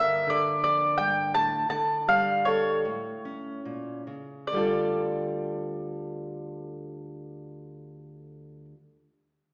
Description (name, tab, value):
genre	acoustic folk duo or small band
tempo	69-87 BPM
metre	4/4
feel	straight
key	D minor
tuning	A4 = 444 Hz
part	mandolin	melody	0.0-8.6 s	C#5 to A5	-27 LUFS	equal	none
part	fingerpicked plugged-in steel-string acoustic guitar	accompaniment	0.0-8.8 s	D2 to Bb4	-33 LUFS	equal	none
room	wet recital hall reverb, RT60 1.6 s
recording	recorded in a church or concert hall, small speaker sound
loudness	-27 LUFS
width	mono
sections	0.0-4.5 A section; 4.5-8.0 B section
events	slowing down 0.0-4.5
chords	0.0 Gm7; 1.3 D5/A; 2.8 A; 4.5 Dm